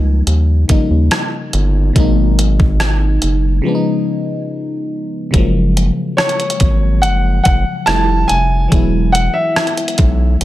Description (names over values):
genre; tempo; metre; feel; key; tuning
contemporary R&B; 71 BPM; 4/4; straight; F# major; A4 = 438 Hz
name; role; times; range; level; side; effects
FM electric piano; accompaniment; 0.0-10.4 s; B2 to E4; -19 LUFS; left 1 dB; chorus, phaser
round analog bass; bass; 0.0-10.4 s; E1 to D#2; -14 LUFS; equal; none
crisp 8-bit digital drum machine; drums; 0.3-10.4 s; hi-hat, kick drum, rim click; -15 LUFS; equal; none
warm baby grand piano; melody; 6.2-10.4 s; C#5 to A5; -17 LUFS; equal; none
room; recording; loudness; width
digital ambience; none; -12 LUFS; side -15 dB against mid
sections
0.0-5.3 A section; 5.3-10.4 B section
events
break 3.6-5.3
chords
0.0 D#7; 2.0 G#m7; 3.6 C#7; 5.3 F#maj7; 7.9 Fmaj7; 8.7 E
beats
0.27 1.11 | 1.96 2.80 3.65 4.49 | 5.34 6.18 7.03 7.87 | 8.72 9.56 10.41